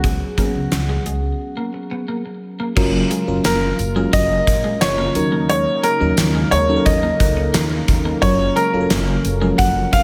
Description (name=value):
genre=1980s-style pop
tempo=88 BPM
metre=4/4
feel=straight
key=F# major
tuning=A4 = 440 Hz
part: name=bright concert grand piano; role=melody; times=0.0-10.0 s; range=F#4 to F#5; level=-23 LUFS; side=equal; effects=delay
part: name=FM electric piano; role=accompaniment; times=0.0-10.0 s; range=E#3 to A#4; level=-25 LUFS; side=equal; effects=chorus
part: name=twelve-string electric guitar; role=riff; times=0.0-10.0 s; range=F#3 to C#4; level=-30 LUFS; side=equal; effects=lush chorus
part: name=upright bass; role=bass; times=0.0-10.0 s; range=F#1 to D#2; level=-25 LUFS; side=equal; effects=none
part: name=gated 80s drum kit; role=drums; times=0.0-10.0 s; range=crash cymbal, hi-hat, kick drum, snare drum, tambourine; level=-22 LUFS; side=equal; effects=none
part: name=brassy analog pad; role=sustained chords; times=2.8-10.0 s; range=C#3 to A#4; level=-30 LUFS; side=equal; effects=chorus
part: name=tambourine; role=percussion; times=2.8-9.7 s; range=none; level=-39 LUFS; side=equal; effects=none
room=light reverb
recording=none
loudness=-18 LUFS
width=mono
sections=0.0-2.8 A section; 2.8-10.0 B section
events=break 1.4-2.8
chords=0.0 C#7sus4; 2.8 F#maj7; 5.2 D#m7; 8.2 F#maj7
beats=| 0.04 0.72 1.40 2.08 | 2.77 3.45 4.13 4.81 | 5.49 6.18 6.86 7.54 | 8.22 8.90 9.59